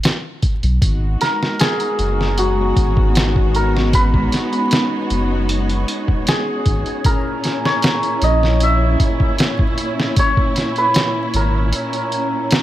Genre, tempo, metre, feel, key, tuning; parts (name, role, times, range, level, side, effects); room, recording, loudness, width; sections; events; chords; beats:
trip hop; 77 BPM; 4/4; straight; G# minor; A4 = 440 Hz
trip hop sampler-style drum kit; drums; 0.0-12.6 s; hi-hat, kick drum, snare drum; -18 LUFS; equal
warm sub bass; bass; 0.6-11.7 s; F#1 to B1; -18 LUFS; equal
rich studio string section; sustained chords; 0.8-12.6 s; A#2 to F#4; -23 LUFS; right 1 dB
wind-like tuned noise texture; texture; 1.9-12.6 s; C#4 to C#5; -29 LUFS; equal; built-in reverb
santur; melody; 1.2-12.6 s; F#4 to E5; -20 LUFS; equal; tape echo
little or no reverb; vinyl crackle; -15 LUFS; side -14 dB against mid
0.0-12.6 A section
break 11.7-12.6
0.0 N.C.; 0.8 G#m7; 7.1 A#dim
0.04 | 0.82 1.60 2.38 3.16 | 3.94 4.71 5.49 6.27 | 7.05 7.83 8.61 9.39 | 10.17 10.95 11.73 12.51